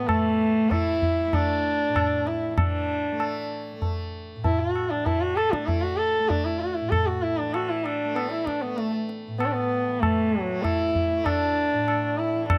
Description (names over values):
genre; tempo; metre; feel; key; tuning
indian classical, Hindustani; 97 BPM; 4/4; straight; A raga durga; A4 = 441 Hz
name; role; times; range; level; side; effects
dark sarangi; melody; 0.0-12.6 s; A3 to A4; -26 LUFS; equal; none
tanpura; drone; 0.0-12.6 s; A2 to A3; -36 LUFS; equal; none
tabla; percussion; 0.1-12.6 s; none; -30 LUFS; equal; none
room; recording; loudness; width
light reverb; none; -25 LUFS; mono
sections
0.0-12.5 A section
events
none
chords
none